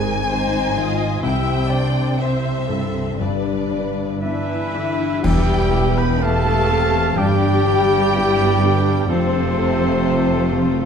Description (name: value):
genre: cinematic, emotional film score for orchestra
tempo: 58-65 BPM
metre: 4/4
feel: rubato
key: unclear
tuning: A4 = 439 Hz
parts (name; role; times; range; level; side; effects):
- rich studio violin section; melody; 0.0-10.9 s; C5 to B5; -26 LUFS; left 2 dB; none
- rich studio violin section; second line; 0.0-10.9 s; A3 to C5; -27 LUFS; left 3 dB; none
- warm baby grand piano; accompaniment; 0.0-10.9 s; C2 to D5; -26 LUFS; left 3 dB; none
- warm studio viola section; accompaniment; 0.0-10.9 s; C4 to E5; -26 LUFS; right 1 dB; none
- concert harp; arpeggios; 0.0-10.9 s; E2 to D5; -26 LUFS; left 8 dB; none
- dark studio cello section; bass; 0.0-10.9 s; E2 to C3; -25 LUFS; right 2 dB; none
- warm studio double bass section; bass; 0.0-10.9 s; E1 to C2; -24 LUFS; right 6 dB; none
- cymbal swell, clash cymbals and concert bass drum; percussion; 1.2-7.1 s; none; -27 LUFS; right 1 dB; none
- clear oboe; second line; 4.2-10.9 s; A4 to G5; -27 LUFS; right 4 dB; none
- concert flute; second line; 4.2-10.9 s; C5 to B5; -27 LUFS; left 1 dB; none
- warm French horn section; sustained chords; 4.2-10.9 s; C3 to B3; -23 LUFS; left 4 dB; none
room: moderate scoring stage reverb, RT60 1.5 s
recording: dark, warm production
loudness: -16 LUFS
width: side -7 dB against mid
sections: 0.0-5.2 A section; 5.2-10.9 B section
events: band accent 5.2-6.2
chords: 0.0 Ab; 1.2 C; 3.2 G; 5.2 Em; 7.2 G; 9.1 F